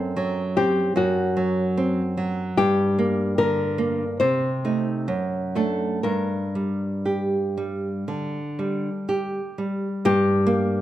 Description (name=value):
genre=romantic duo for nylon-string guitar and classical guitar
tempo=58-77 BPM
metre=4/4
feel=rubato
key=G minor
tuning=A4 = 440 Hz
part: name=nylon-string guitar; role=melody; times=0.0-10.8 s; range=F#4 to C5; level=-23 LUFS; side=left 2 dB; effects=none
part: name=nylon-string guitar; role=accompaniment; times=0.0-10.8 s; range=F#2 to G4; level=-23 LUFS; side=right 1 dB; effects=none
room=moderate recital hall reverb, RT60 1.6 s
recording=dark, warm production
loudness=-21 LUFS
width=side -13 dB against mid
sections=0.0-10.1 A section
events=none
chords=0.0 F#dim; 2.6 Gm; 4.2 Adim/C; 5.1 D7/F#; 6.0 Gm